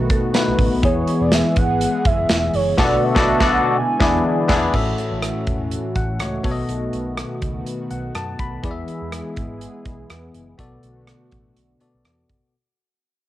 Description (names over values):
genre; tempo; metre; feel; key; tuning
1980s-style pop; 123 BPM; 4/4; swing 55% on 16ths; unclear; A4 = 440 Hz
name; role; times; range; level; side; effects
marimba with hard mallets; second line; 0.0-0.7 s; A4 to B4; -32 LUFS; right 3 dB; none
bell-like tine electric piano; accompaniment; 0.0-12.6 s; A2 to B5; -21 LUFS; left 3 dB; analog chorus, cassette tape
brassy analog pad; sustained chords; 0.0-12.5 s; D3 to G#4; -27 LUFS; right 1 dB; chorus, cassette tape
vintage muted fingered electric bass; bass; 0.0-12.4 s; E1 to B2; -28 LUFS; equal; none
modern studio drum kit; drums; 0.1-12.4 s; crash cymbal, hi-hat, kick drum, rim click, snare drum, tambourine; -22 LUFS; right 1 dB; cassette tape
warm velvety synth lead; melody; 0.8-4.5 s; C#5 to G#5; -22 LUFS; right 3 dB; chorus, cassette tape
room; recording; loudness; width
light reverb, small room ambience; home recording on cassette; -17 LUFS; side -14 dB against mid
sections
0.0-4.7 A section; 4.7-12.5 B section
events
band accent 2.8-4.7; fade-out 4.7-12.5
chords
0.0 B7; 0.8 E; 2.8 Bm7; 3.8 E7; 4.7 A6; 6.4 B7; 8.6 E; 10.6 Bm7